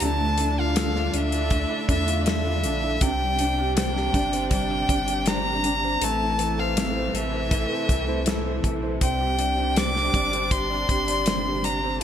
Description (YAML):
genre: pop ballad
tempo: 80 BPM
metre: 4/4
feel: straight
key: unclear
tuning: A4 = 437 Hz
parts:
  - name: rich violin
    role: melody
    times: 0.0-12.0 s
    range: E5 to D6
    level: -26 LUFS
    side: left 1 dB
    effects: none
  - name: warm concert grand piano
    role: accompaniment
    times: 0.0-12.0 s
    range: C3 to D5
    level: -30 LUFS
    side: left 1 dB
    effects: lush chorus
  - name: warm studio string section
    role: sustained chords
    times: 0.0-12.0 s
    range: C3 to E4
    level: -32 LUFS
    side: equal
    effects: none
  - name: fingerpicked plugged-in steel-string acoustic guitar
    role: arpeggios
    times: 0.0-12.0 s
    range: A2 to A4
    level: -32 LUFS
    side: right 5 dB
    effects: analog chorus
  - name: saturated sub bass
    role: bass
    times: 0.0-12.0 s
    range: G1 to E2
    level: -29 LUFS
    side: equal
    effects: none
  - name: damped 70s drum kit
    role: drums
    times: 0.0-12.0 s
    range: hi-hat, kick drum, snare drum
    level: -26 LUFS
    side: left 1 dB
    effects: gated reverb
room: moderate plate reverb, RT60 3.0 s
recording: bright 1980s-style digital production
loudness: -21 LUFS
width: side -9 dB against mid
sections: 0.0-12.0 A section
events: none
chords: 0.0 Dmadd9; 3.0 Csus2; 6.0 Am; 9.0 Csus2